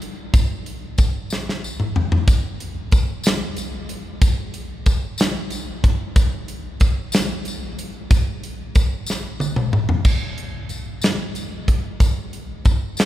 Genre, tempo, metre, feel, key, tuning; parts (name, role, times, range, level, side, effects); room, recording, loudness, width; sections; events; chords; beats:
gospel; 62 BPM (dotted quarters); 6/8; straight
modern studio drum kit; drums; 0.0-13.1 s; crash cymbal, hi-hat, kick drum, snare drum, toms; -19 LUFS; equal
tambourine; percussion; 0.3-13.1 s; -34 LUFS; left 3 dB
moderate cathedral reverb, RT60 6.0 s; recorded in a church or concert hall; -18 LUFS; side -13 dB against mid
0.0-10.1 A section; 10.1-13.1 B section
drum fill 1.3-2.3, 9.1-10.1
| 0.34 1.31 | 2.28 3.25 | 4.22 5.19 | 6.16 7.13 | 8.11 9.08 | 10.05 11.03 | 12.01 12.98